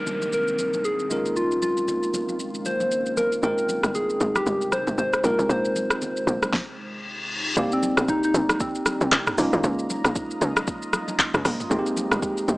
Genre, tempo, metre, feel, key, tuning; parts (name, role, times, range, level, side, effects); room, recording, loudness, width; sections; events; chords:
amapiano; 116 BPM; 4/4; swing 58% on 16ths; C phrygian; A4 = 441 Hz
soft struck synth lead; melody; 0.0-10.5 s; Bb3 to C5; -25 LUFS; equal; chorus, tape echo
bell-like tine electric piano; accompaniment; 0.0-12.6 s; G3 to G5; -29 LUFS; right 1 dB; phaser
deep dark ambient pad; sustained chords; 0.0-12.6 s; C2 to C6; -35 LUFS; equal; chorus, built-in reverb, sidechain pumping
downlifter and reverse cymbal; sound effects; 0.0-7.6 s; -32 LUFS; left 2 dB
deep house drum kit; drums; 0.1-12.6 s; handclaps, hi-hat, kick drum, rim click, shaker, snare drum, toms; -25 LUFS; equal
congas; percussion; 0.1-12.6 s; -36 LUFS; equal
tight log drum bass; bass; 3.4-12.6 s; G1 to Eb2; -26 LUFS; equal
light reverb; dry, gritty hardware recording, small speaker sound; -21 LUFS; side -22 dB against mid
0.0-7.6 A section; 7.6-12.6 B section
stop 6.5-7.6; reverse cymbal 6.8-7.6; drop 7.6-12.6
0.0 Cm9; 1.1 Db69; 3.4 Abmaj7; 5.2 Bb9sus4; 7.6 Cm9; 9.4 Db69; 11.7 Abmaj7